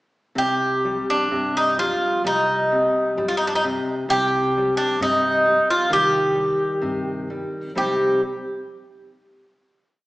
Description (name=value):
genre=fado-style ballad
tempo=65 BPM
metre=2/4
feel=rubato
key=C minor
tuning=A4 = 441 Hz
part: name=Irish bouzouki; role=melody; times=0.4-8.2 s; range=D4 to G4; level=-19 LUFS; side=equal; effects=none
part: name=nylon-string guitar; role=accompaniment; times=0.4-8.2 s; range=C3 to Eb4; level=-26 LUFS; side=left 2 dB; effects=none
part: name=upright bass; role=bass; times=0.4-8.2 s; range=C2 to G2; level=-36 LUFS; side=equal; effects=none
room=wet recital hall reverb, RT60 1.7 s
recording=recorded in a church or concert hall, small speaker sound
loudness=-18 LUFS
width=side -19 dB against mid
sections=0.4-7.8 A section; 7.8-9.6 final chord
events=none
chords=0.4 Cm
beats=| 0.35 1.31 | 2.24 3.17 | 4.09 5.00 | 5.90 6.82 | 7.76